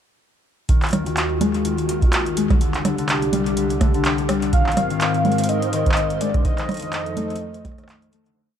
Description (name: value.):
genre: IDM.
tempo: 125 BPM.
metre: 4/4.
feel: swing 56% on 16ths.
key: unclear.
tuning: A4 = 440 Hz.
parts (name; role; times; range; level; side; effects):
hollow soft pad; sustained chords; 0.9-8.3 s; C2 to Bb4; -25 LUFS; equal; chorus, sidechain pumping.
Celtic harp; arpeggios; 0.7-8.6 s; D3 to Eb4; -24 LUFS; left 6 dB; ping-pong delay.
booming analog drum machine; drums; 0.7-8.3 s; congas, handclaps, hi-hat, rim click; -24 LUFS; right 3 dB; ping-pong delay.
electronic kick drum; drums; 0.7-7.8 s; none; -19 LUFS; right 1 dB; none.
warm velvety synth lead; melody; 4.5-7.8 s; D5 to F5; -24 LUFS; right 1 dB; chorus, cassette tape.
flickering grainy texture; texture; 4.9-8.4 s; C5; -33 LUFS; right 7 dB; built-in reverb.
room: light reverb, digital ambience.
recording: dark, warm production.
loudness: -18 LUFS.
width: side -9 dB against mid.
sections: 0.7-8.4 groove.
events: fade-out 5.8-8.4.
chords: 0.7 Ebmadd9; 2.6 Csus2; 4.5 Abadd9; 6.4 F7.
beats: | 0.69 1.17 1.65 2.13 | 2.61 3.09 3.57 4.05 | 4.53 5.01 5.49 5.97 | 6.45 6.93 7.41 7.89.